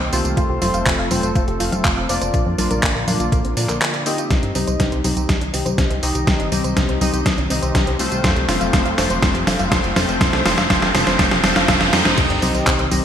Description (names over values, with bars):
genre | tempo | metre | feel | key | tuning
italo disco | 122 BPM | 4/4 | straight | C dorian | A4 = 439 Hz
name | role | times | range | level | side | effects
warm analog pad | sustained chords | 0.0-13.0 s | D3 to A4 | -28 LUFS | equal | chorus
soft round pluck | arpeggios | 0.0-13.0 s | Bb3 to F5 | -27 LUFS | right 2 dB | chorus, ping-pong delay
chorused polysynth | stabs | 0.0-13.0 s | A3 to Eb5 | -23 LUFS | left 2 dB | ping-pong delay
chorused synth bass | bass | 0.0-13.0 s | F1 to Bb2 | -24 LUFS | equal | tube saturation
clean 12-bit digital drum machine | drums | 0.1-13.0 s | congas, crash cymbal, handclaps, hi-hat, snare drum, tambourine | -19 LUFS | equal | overdrive, gated reverb
electronic kick drum | drums | 0.4-12.8 s | none | -21 LUFS | equal | overdrive
riser and sub drop | sound effects | 7.5-13.0 s | none | -26 LUFS | equal | none
room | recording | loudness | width
wet lush hall reverb, RT60 1.6 s | bright 1980s-style digital production, vinyl crackle | -15 LUFS | side -9 dB against mid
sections
0.0-4.3 A section; 4.3-12.2 B section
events
drum fill 4.3-12.2; filter sweep on synth arpeggio sound 4.3-12.2; riser 7.5-12.2; impact 12.2-13.0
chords
0.4 F; 2.3 Bb; 4.3 Cm; 8.2 F; 12.2 Cm